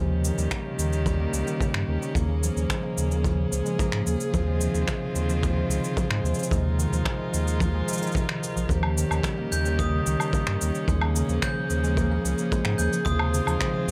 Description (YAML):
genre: folktronica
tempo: 110 BPM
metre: 4/4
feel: straight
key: Eb mixolydian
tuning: A4 = 439 Hz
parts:
  - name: rich string quartet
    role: sustained chords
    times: 0.0-13.9 s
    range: Eb3 to Ab4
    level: -34 LUFS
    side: equal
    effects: none
  - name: concert harp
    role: arpeggios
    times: 0.0-13.9 s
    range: C3 to F4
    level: -31 LUFS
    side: equal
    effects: digital delay
  - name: warm sub bass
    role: bass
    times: 0.0-13.9 s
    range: Bb1 to Ab2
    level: -28 LUFS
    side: equal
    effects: none
  - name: electronic shaker, finger snaps and woodblock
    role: drums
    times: 0.2-13.9 s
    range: none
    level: -34 LUFS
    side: equal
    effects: none
  - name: kick drum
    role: drums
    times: 0.5-13.7 s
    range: none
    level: -32 LUFS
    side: equal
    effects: none
  - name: glockenspiel with brass mallets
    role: second line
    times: 9.5-13.3 s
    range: Eb6 to G6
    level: -35 LUFS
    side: equal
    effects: delay
room: moderate studio ambience, RT60 0.5 s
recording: none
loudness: -25 LUFS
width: mono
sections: 0.0-13.9 A section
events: none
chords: 0.0 Eb7; 2.2 Bbm7/Eb; 4.3 Dbmaj7/Eb; 6.5 Fm7/Eb; 8.7 Eb7; 10.9 Bbm7/Eb; 13.1 Dbmaj7/Eb